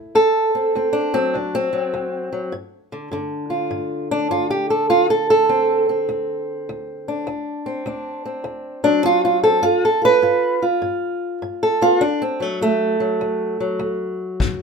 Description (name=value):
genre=acoustic country blues, solo or duo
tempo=101 BPM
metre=4/4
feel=swing 65% on 8ths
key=D mixolydian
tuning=A4 = 440 Hz
part: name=fingerpicked old ladder-braced acoustic guitar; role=melody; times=0.0-14.6 s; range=D2 to B4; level=-18 LUFS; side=right 1 dB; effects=none
part: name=kick drum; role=drums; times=14.4-14.6 s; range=none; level=-20 LUFS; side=left 4 dB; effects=none
room=light reverb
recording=minimal, uncompressed stereo recording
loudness=-17 LUFS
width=side -5 dB against mid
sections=0.2-14.6 A section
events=steel-string acoustic guitar solo 0.2-14.6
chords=0.2 D7; 2.5 G5; 4.9 D7(no3); 9.6 G7; 12.0 D